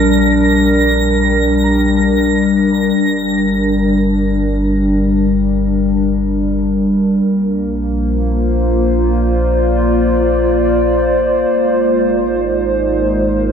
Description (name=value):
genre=ambient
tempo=free time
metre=none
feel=none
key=unclear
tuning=A4 = 442 Hz
part: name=warbly tape-like pad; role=sustained chords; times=0.0-13.5 s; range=G3 to D5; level=-13 LUFS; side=left 1 dB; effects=chorus, built-in reverb
part: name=soft round pluck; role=arpeggios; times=0.0-6.1 s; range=Bb3 to Bb5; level=-38 LUFS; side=left 2 dB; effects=none
part: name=warm sub bass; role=bass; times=0.0-13.5 s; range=G1 to Bb1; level=-19 LUFS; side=right 1 dB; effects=tube saturation
part: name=twinkling granular texture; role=texture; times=0.0-3.0 s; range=Bb6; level=-20 LUFS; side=right 2 dB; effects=built-in reverb
room=wet cathedral reverb, RT60 5.7 s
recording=none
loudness=-12 LUFS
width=side -7 dB against mid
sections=0.0-3.0 A section; 3.0-13.5 B section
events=none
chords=0.0 Gm/Bb; 3.0 Gm; 7.3 Bb; 11.5 Abadd9